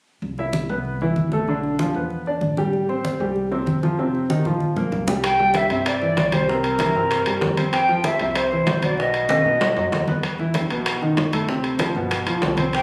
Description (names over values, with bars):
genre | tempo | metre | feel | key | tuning
Afro-Cuban jazz | 192 BPM | 4/4 | straight | C major | A4 = 438 Hz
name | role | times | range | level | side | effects
upright bass | bass | 0.2-12.8 s | G1 to B2 | -33 LUFS | equal | none
congas | percussion | 0.2-12.8 s | none | -28 LUFS | equal | none
clear baby grand piano | accompaniment | 0.4-12.8 s | B2 to E5 | -25 LUFS | equal | none
mellow concert flute | melody | 5.2-10.0, 12.8 s | Bb4 to G5 | -23 LUFS | equal | plate reverb
bongos | percussion | 5.2-12.8 s | none | -33 LUFS | equal | none
timbales | percussion | 5.2-12.8 s | none | -28 LUFS | equal | none
room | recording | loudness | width
moderate studio reverb, RT60 0.6 s | recorded on a phone in the room, studio reverb, compression | -21 LUFS | mono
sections
0.2-5.2 A section; 5.2-12.8 B section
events
drum fill 4.5-5.2, 9.3-10.2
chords
0.2 Cmaj7; 1.5 Bdim; 2.1 E5; 2.7 Am7; 4.0 F5; 4.6 Bbsus2; 5.2 Cadd9; 6.5 C7; 7.7 Fsus2; 9.0 B; 10.2 E5; 11.5 Dm7; 12.1 G7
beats
| 0.22 0.54 0.85 1.17 | 1.48 1.79 2.10 2.42 | 2.73 3.04 3.36 3.67 | 3.98 4.30 4.61 4.92 | 5.24 5.55 5.86 6.17 | 6.49 6.80 7.11 7.42 | 7.74 8.05 8.36 8.67 | 8.98 9.30 9.61 9.92 | 10.23 10.55 10.86 11.17 | 11.48 11.79 12.11 12.42 | 12.73